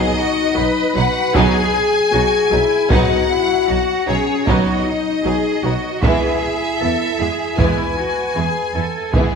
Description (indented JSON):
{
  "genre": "cinematic, epic orchestral film score",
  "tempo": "77 BPM",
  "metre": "4/4",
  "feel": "straight",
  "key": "unclear",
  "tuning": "A4 = 443 Hz",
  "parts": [
    { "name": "rich studio violin section", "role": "melody", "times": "0.0-9.4 s", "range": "G#4 to G#5", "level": "-22 LUFS", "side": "left 4 dB", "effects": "none" },
    { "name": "warm symphonic violin section", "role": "second line", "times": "0.0-9.4 s", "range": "B3 to E4", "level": "-26 LUFS", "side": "left 1 dB", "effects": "none" },
    { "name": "warm symphonic viola section", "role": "accompaniment", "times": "0.0-9.4 s", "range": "E3 to B3", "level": "-24 LUFS", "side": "right 3 dB", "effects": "none" },
    { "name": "mellow French horn section", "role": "sustained chords", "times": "0.0-9.4 s", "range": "G#3 to B4", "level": "-20 LUFS", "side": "left 5 dB", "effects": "none" },
    { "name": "warm studio cello section", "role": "bass", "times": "0.0-9.4 s", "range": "D#4 to B4", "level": "-23 LUFS", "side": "right 3 dB", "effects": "none" },
    { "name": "rich symphonic double bass section", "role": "bass", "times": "0.6-9.2 s", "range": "B1 to E2", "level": "-24 LUFS", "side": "right 5 dB", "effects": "none" },
    { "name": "solo taiko drums", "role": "drums", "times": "1.3-9.4 s", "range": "none", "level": "-20 LUFS", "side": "right 1 dB", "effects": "none" }
  ],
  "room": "wet scoring stage reverb, RT60 1.8 s",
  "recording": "none",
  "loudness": "-15 LUFS",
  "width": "side -6 dB against mid",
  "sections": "0.0-9.4 A section",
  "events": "none",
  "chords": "0.0 B; 6.0 E"
}